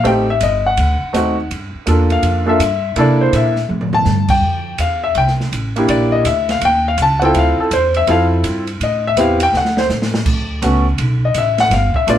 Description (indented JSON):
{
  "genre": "jazz piano trio",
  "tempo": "165 BPM",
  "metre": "4/4",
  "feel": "swing 64% on 8ths",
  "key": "unclear",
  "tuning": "A4 = 440 Hz",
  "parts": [
    { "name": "warm concert grand piano", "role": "melody", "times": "0.0-12.2 s", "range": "A3 to A5", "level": "-14 LUFS", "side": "left 1 dB", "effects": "none" },
    { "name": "upright bass", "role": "bass", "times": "0.0-12.2 s", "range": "G1 to C3", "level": "-18 LUFS", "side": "equal", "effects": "none" },
    { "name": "open jazz drum kit", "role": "drums", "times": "0.0-12.2 s", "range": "crash cymbal, hi-hat, kick drum, ride cymbal, snare drum, toms", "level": "-23 LUFS", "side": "right 2 dB", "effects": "none" }
  ],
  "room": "moderate studio reverb, RT60 0.6 s",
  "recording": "band playing live in one room",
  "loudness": "-13 LUFS",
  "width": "side -10 dB against mid",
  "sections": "0.0-10.3 A section; 10.3-12.2 B section",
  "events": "drum fill 3.7-4.1, 9.5-10.3",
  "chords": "0.0 Am7b5; 0.8 D7b9; 1.5 Gm9; 3.0 C13; 4.4 Fmaj9; 5.9 Em7b5; 6.6 C#add9(#11); 7.3 Dm9; 8.8 Am7; 9.5 D5; 10.3 A69"
}